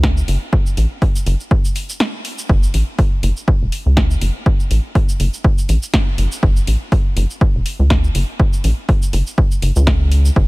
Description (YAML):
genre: minimal techno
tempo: 122 BPM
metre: 4/4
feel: swing 56% on 16ths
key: F# minor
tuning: A4 = 443 Hz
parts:
  - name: rubbery square bass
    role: bass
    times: 0.0-10.5 s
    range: E1 to C#2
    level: -14 LUFS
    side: equal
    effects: sidechain pumping
  - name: electronic kick drum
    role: drums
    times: 0.0-10.5 s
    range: none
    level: -15 LUFS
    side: equal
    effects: none
  - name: house drum kit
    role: drums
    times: 0.0-10.3 s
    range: cabasa, hi-hat, snare drum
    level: -24 LUFS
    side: equal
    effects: none
room: digital ambience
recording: none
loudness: -14 LUFS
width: side -24 dB against mid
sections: 0.0-10.5 A section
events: break 2.0-2.5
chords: none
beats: 0.04 | 0.53 1.02 1.51 2.00 | 2.49 2.98 3.48 3.97 | 4.46 4.95 5.44 5.94 | 6.43 6.92 7.41 7.90 | 8.39 8.89 9.38 9.87 | 10.36